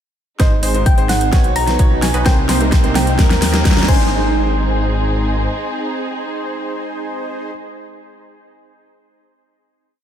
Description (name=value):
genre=EDM, festival progressive house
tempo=129 BPM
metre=4/4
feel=straight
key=Ab major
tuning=A4 = 439 Hz
part: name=thumb-piano-like synth pluck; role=melody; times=0.4-7.5 s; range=Eb5 to Bb5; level=-23 LUFS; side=left 1 dB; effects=chorus, diffuse ambient delay
part: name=warm grand piano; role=accompaniment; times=0.4-7.5 s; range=Ab2 to C5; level=-27 LUFS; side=right 1 dB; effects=sidechain pumping, diffuse ambient delay
part: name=dark studio string section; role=sustained chords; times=0.4-7.5 s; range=C3 to Bb4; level=-28 LUFS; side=left 1 dB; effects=sidechain pumping
part: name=bright concert grand piano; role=arpeggios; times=0.4-7.5 s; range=Bb4 to Db5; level=-28 LUFS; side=equal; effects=sidechain pumping, diffuse ambient delay
part: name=supersaw stab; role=riff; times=0.4-7.5 s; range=Bb3 to Db5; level=-24 LUFS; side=right 1 dB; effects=sidechain pumping, low-pass filter, diffuse ambient delay
part: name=wide detuned saw bass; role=bass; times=0.4-5.5 s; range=Ab1 to Eb2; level=-19 LUFS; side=equal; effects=chorus, sidechain pumping
part: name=big-room dance drum kit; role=drums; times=0.4-4.0 s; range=crash cymbal, hi-hat, snare drum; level=-21 LUFS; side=equal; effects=overdrive, studio reverb
part: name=electronic kick drum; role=drums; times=0.4-4.0 s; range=none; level=-14 LUFS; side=equal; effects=studio reverb
part: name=riser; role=sound effects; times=2.5-4.1 s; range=none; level=-27 LUFS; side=right 2 dB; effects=none
room=moderate church reverb, RT60 3.2 s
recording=dreamy mix soaked in reverb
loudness=-13 LUFS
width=side -10 dB against mid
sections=0.4-4.1 build; 4.1-7.8 final hit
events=build-up 0.4-4.1; drum fill 0.4-4.1; filter sweep on supersaw synth 0.4-4.1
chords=0.4 Ab; 1.3 B; 2.3 Cm7; 3.2 Eb; 3.9 Ab